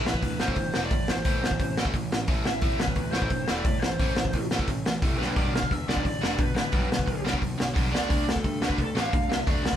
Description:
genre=punk rock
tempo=175 BPM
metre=4/4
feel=straight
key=A minor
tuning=A4 = 441 Hz
part: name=lead guitar through a small cranked amp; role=melody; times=0.0-9.8 s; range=A4 to F5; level=-32 LUFS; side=equal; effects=overdrive
part: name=biting overdriven guitar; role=riff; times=0.0-9.8 s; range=G2 to D4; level=-30 LUFS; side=equal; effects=none
part: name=fuzz picked electric bass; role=bass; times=0.1-9.8 s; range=E1 to D3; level=-33 LUFS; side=equal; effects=overdrive
part: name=raw garage drum kit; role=drums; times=0.1-9.8 s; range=hi-hat, kick drum, snare drum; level=-26 LUFS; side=equal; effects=none
room=light reverb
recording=band playing live in one room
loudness=-24 LUFS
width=side -10 dB against mid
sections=0.0-9.8 A section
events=drum fill 5.2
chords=0.0 Am; 5.2 G; 7.9 D5

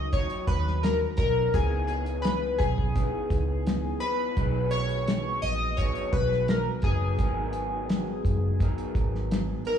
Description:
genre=indie pop, bedroom pop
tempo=85 BPM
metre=4/4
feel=straight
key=unclear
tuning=A4 = 440 Hz
part: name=chorused retro synth keys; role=melody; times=0.0-9.8 s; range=G#4 to D#5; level=-29 LUFS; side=left 3 dB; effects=lush chorus, slapback echo, tape echo
part: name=electric guitar through a small old amp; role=accompaniment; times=0.0-9.8 s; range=G#2 to A#4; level=-34 LUFS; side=left 2 dB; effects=lush chorus, vibrato effect, slapback echo
part: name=vintage muted fingered electric bass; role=bass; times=0.0-9.5 s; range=F#1 to D#2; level=-28 LUFS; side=right 1 dB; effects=none
part: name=cloth-damped thuddy drum kit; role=drums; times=0.1-9.8 s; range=hi-hat, kick drum, snare drum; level=-29 LUFS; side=right 1 dB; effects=none
room=light reverb, small room ambience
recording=live gig heard through the venue's PA, club reverb, studio ambience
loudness=-24 LUFS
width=side -8 dB against mid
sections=0.0-9.8 A section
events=none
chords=0.0 D#m7; 1.5 C#m9; 4.4 G#m9

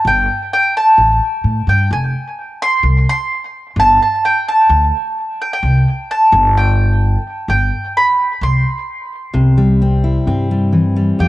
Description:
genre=indie folk with a building arrangement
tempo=129 BPM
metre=4/4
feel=straight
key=C major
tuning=A4 = 440 Hz
part: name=mandolin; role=melody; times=0.0-11.3 s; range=G5 to C6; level=-14 LUFS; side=equal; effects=cassette tape, analog delay
part: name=upright bass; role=bass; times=0.0-11.3 s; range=F1 to A2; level=-14 LUFS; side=equal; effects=none
part: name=fingerpicked steel-string acoustic guitar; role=accompaniment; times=9.3-11.3 s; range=F2 to G4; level=-14 LUFS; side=left 1 dB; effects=cassette tape
room=studio reverb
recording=home recording on cassette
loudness=-12 LUFS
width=side -16 dB against mid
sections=0.0-9.3 A section; 9.3-11.2 B section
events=none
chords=0.0 Gsus2; 1.0 Gsus2/A; 1.9 Fm; 3.8 Gsus2; 5.6 C5; 6.3 N.C.; 9.3 C

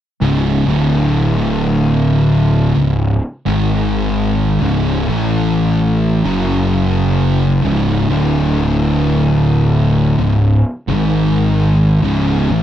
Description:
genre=metal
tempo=65 BPM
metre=4/4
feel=straight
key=unclear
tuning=A4 = 440 Hz
part: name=thick fuzz guitar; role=riff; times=0.2-12.6 s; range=C#2 to A3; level=-15 LUFS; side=left 4 dB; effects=distortion
part: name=thick fuzz guitar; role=riff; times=0.2-12.6 s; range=C#2 to A3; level=-17 LUFS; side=right 7 dB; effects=distortion
part: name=fuzz fingered electric bass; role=bass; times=0.2-12.6 s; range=C#1 to A1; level=-19 LUFS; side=equal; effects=overdrive, tube saturation
room=little or no reverb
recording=dry, close 1970s-style studio recording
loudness=-12 LUFS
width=side -11 dB against mid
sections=0.2-12.6 A section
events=none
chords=0.2 C#5; 0.7 D5; 2.8 C#5; 3.5 G#5; 4.6 C#5; 5.1 A5; 6.3 F#5; 7.6 C#5; 8.1 D5; 10.2 C#5; 10.9 G#5; 12.0 C#m

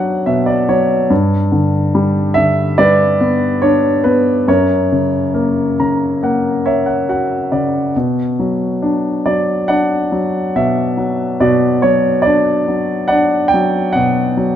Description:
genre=classical, lyrical solo piano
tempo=71 BPM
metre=4/4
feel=rubato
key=B minor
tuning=A4 = 442 Hz
part: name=warm baby grand piano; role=solo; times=0.0-14.6 s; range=F#2 to A#5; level=-12 LUFS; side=equal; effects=none
room=moderate recital hall reverb, RT60 1.6 s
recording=dark, warm production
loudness=-12 LUFS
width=side -10 dB against mid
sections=0.0-14.6 A section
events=grand piano fill 0.0-1.1, 5.3-7.9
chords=0.0 Bm; 1.1 G; 4.5 F#; 7.9 Bm

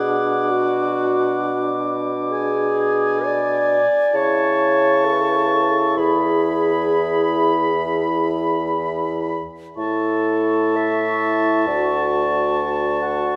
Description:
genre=classical, slow romantic movement for wind quintet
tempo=59-68 BPM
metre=4/4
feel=rubato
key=A major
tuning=A4 = 440 Hz
part: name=concert flute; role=melody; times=0.0-13.4 s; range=B5 to D6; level=-27 LUFS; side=equal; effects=none
part: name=warm oboe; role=second line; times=0.0-13.4 s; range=F#5 to B5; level=-28 LUFS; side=equal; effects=none
part: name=clear French horn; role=accompaniment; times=0.0-13.4 s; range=D4 to F#4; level=-28 LUFS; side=equal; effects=none
part: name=mellow clarinet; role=accompaniment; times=0.0-13.4 s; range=F#4 to F#5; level=-24 LUFS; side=equal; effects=none
part: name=mellow bassoon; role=bass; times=0.0-13.4 s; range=D2 to C#3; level=-25 LUFS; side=equal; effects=none
room=wet concert hall reverb, RT60 2.5 s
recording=none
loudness=-19 LUFS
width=mono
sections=0.0-13.4 A section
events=none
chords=0.0 Bm; 2.3 G#dim/B; 4.2 A/C#; 6.0 E; 9.8 A; 11.7 Dmaj7

